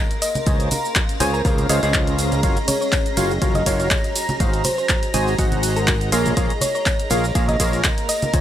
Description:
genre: piano house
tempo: 122 BPM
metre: 4/4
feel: swing 54% on 16ths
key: unclear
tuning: A4 = 441 Hz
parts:
  - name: analog string pad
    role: sustained chords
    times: 0.0-8.4 s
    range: Bb5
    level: -30 LUFS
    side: right 2 dB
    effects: ensemble chorus, sidechain pumping
  - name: granular cloud pad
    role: texture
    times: 0.0-8.4 s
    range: Db4 to C6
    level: -29 LUFS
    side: equal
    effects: built-in reverb, sidechain pumping
  - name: punchy analog drum machine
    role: drums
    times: 0.1-8.4 s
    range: handclaps, hi-hat, ride cymbal, shaker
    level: -24 LUFS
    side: equal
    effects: overdrive
  - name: tambourine and congas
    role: percussion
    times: 0.1-8.4 s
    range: none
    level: -30 LUFS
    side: right 2 dB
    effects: none
  - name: thumb-piano-like synth pluck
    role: melody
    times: 0.2-8.2 s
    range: Bb4 to Eb5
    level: -26 LUFS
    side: left 1 dB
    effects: chorus, tape echo
  - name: percussive organ stab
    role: riff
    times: 0.5-8.4 s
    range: Db3 to Ab5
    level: -24 LUFS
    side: equal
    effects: analog chorus, sidechain pumping
  - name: modern bright fingered electric bass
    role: bass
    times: 0.5-8.4 s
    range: Gb1 to Db2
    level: -23 LUFS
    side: equal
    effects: tube saturation, sidechain pumping
  - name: electronic kick drum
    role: drums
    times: 0.5-8.4 s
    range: none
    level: -22 LUFS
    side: equal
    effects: none
room: little or no reverb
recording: dry, gritty hardware recording, transformer saturation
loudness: -17 LUFS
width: side -11 dB against mid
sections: 0.0-8.4 A section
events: none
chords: 0.5 Dbmaj7; 2.4 Gbmaj7; 4.2 Ab7; 6.1 Bbm7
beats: | 0.47 0.96 1.45 1.94 | 2.43 2.93 3.42 3.91 | 4.40 4.89 5.38 5.88 | 6.37 6.86 7.35 7.84 | 8.34

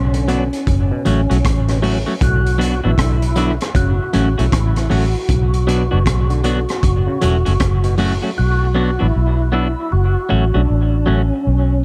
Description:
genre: dub reggae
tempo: 78 BPM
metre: 4/4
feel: swing 63% on 16ths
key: B minor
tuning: A4 = 440 Hz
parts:
  - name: percussive tonewheel organ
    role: melody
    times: 0.0-11.8 s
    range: C#4 to F#4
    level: -25 LUFS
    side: equal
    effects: overdrive, chorus vibrato, slow rotary speaker, dub echo
  - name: vintage muted fingered electric bass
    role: bass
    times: 0.0-11.8 s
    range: E1 to B1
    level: -19 LUFS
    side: equal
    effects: none
  - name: auto-wah clav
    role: arpeggios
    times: 0.1-8.2 s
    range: A2 to D3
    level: -31 LUFS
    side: equal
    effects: none
  - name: crunchy breakbeat drum kit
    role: drums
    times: 0.1-8.2 s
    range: hi-hat, kick drum, rim click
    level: -23 LUFS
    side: equal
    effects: none
  - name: clean electric guitar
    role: accompaniment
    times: 0.3-11.2 s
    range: F#3 to F#4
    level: -24 LUFS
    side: equal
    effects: dub echo
room: light reverb, small room ambience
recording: dark, warm production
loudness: -16 LUFS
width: mono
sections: 0.0-11.8 A section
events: part muted 8.4-11.8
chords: 0.0 Bm; 0.7 F#m; 2.2 Bm; 3.8 F#m; 5.3 Bm; 6.8 F#m; 8.4 Bm; 9.9 F#m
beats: 0.67 1.44 | 2.21 2.98 3.75 4.52 | 5.29 6.06 6.83 7.60 | 8.37 9.14 9.91 10.68 | 11.45

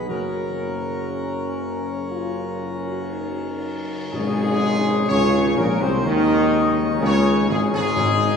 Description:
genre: classical, ceremonial fanfare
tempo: 58-63 BPM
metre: 4/4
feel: straight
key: unclear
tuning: A4 = 440 Hz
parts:
  - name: clear trombone section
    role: sustained chords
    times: 0.0-8.4 s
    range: Ab2 to Db4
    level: -27 LUFS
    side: right 3 dB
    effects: none
  - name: dark French horn section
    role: sustained chords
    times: 0.0-8.4 s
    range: Ab3 to Gb4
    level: -26 LUFS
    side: left 4 dB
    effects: none
  - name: pipe organ, plenum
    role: sustained chords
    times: 0.0-8.4 s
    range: Db3 to Db5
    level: -28 LUFS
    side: left 2 dB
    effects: none
  - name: mellow tuba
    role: bass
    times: 0.0-8.4 s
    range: Gb1 to Eb2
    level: -23 LUFS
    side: equal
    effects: none
  - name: warm trumpet section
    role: melody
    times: 0.1-8.4 s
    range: Ab4 to Eb5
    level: -26 LUFS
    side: left 2 dB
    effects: none
  - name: cymbal swell and tam-tam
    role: percussion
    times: 0.1-7.9 s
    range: none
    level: -33 LUFS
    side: left 2 dB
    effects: none
  - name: timpani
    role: percussion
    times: 8.0-8.4 s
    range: Ab2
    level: -24 LUFS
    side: left 2 dB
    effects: none
room: wet church reverb, RT60 3.2 s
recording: studio reverb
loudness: -19 LUFS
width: side -6 dB against mid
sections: 0.0-4.1 A section; 4.1-8.4 B section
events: band accent 4.1-5.1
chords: 0.1 Gb; 4.1 Dbsus2/Ab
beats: | 0.07 1.09 2.10 3.11 | 4.13 5.09 6.05 7.01 | 7.98

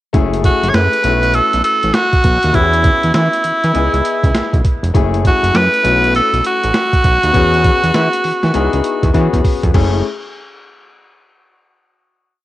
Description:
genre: R&B, new jack swing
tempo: 100 BPM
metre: 4/4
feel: swing 64% on 16ths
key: F# dorian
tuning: A4 = 435 Hz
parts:
  - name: clear grand piano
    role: accompaniment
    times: 0.1-10.0 s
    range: A3 to D#5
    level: -20 LUFS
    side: left 7 dB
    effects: none
  - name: fat analog bass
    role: bass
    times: 0.1-10.0 s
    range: E#1 to E3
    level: -16 LUFS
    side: right 1 dB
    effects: none
  - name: boom bap sampler-style drum kit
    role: drums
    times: 0.1-9.9 s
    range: crash cymbal, hi-hat, kick drum, snare drum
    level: -16 LUFS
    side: equal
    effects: cassette tape
  - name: raspy tenor saxophone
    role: melody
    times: 0.5-9.1 s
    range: E4 to C#5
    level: -14 LUFS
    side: right 1 dB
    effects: cassette tape
room: light reverb, digital ambience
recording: home recording on cassette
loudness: -11 LUFS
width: side -15 dB against mid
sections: 0.1-9.7 verse; 9.7-12.1 final chord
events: drum fill 9.1-9.7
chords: 0.1 F#m9; 1.0 B7sus4; 2.5 E6; 3.7 C#m9; 4.9 F#m9; 5.8 B7sus4; 7.3 E6; 8.5 C#m9; 9.1 E69; 9.7 F#m9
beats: | 0.14 0.74 1.34 1.94 | 2.54 3.14 3.74 4.34 | 4.94 5.54 6.14 6.74 | 7.34 7.94 8.54 9.14 | 9.74

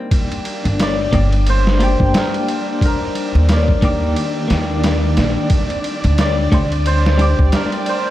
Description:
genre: trip hop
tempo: 89 BPM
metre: 4/4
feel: swing 59% on 16ths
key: G minor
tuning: A4 = 440 Hz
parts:
  - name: concert harp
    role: arpeggios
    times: 0.0-8.1 s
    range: G3 to G4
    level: -25 LUFS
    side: left 5 dB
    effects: vintage 12-bit sampler grit, tape echo
  - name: string machine, cellos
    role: sustained chords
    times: 0.1-8.1 s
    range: D5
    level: -27 LUFS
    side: equal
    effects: ensemble chorus
  - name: trip hop sampler-style drum kit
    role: drums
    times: 0.1-8.1 s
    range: kick drum, ride cymbal, snare drum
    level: -19 LUFS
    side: equal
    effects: low-pass filter on cymbals, low-pass filter on snare, low-pass filter on kick, low-pass filter on room
  - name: upright bass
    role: bass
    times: 0.7-7.5 s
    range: G1 to Eb2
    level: -16 LUFS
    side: equal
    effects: none
  - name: cimbalom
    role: melody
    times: 0.8-8.1 s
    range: Bb4 to D5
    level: -23 LUFS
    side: equal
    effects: dub echo
  - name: clean electric guitar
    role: accompaniment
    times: 1.1-8.1 s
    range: Eb3 to G5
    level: -22 LUFS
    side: equal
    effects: tremolo, tape echo
room: light reverb, studio reverb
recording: vinyl crackle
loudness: -14 LUFS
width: side -14 dB against mid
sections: 0.1-8.1 A section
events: none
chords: 0.1 Gm; 2.8 Ebmaj7; 5.5 D7sus4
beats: | 0.12 0.79 1.47 2.14 | 2.81 3.49 4.16 4.84 | 5.51 6.18 6.86 7.53

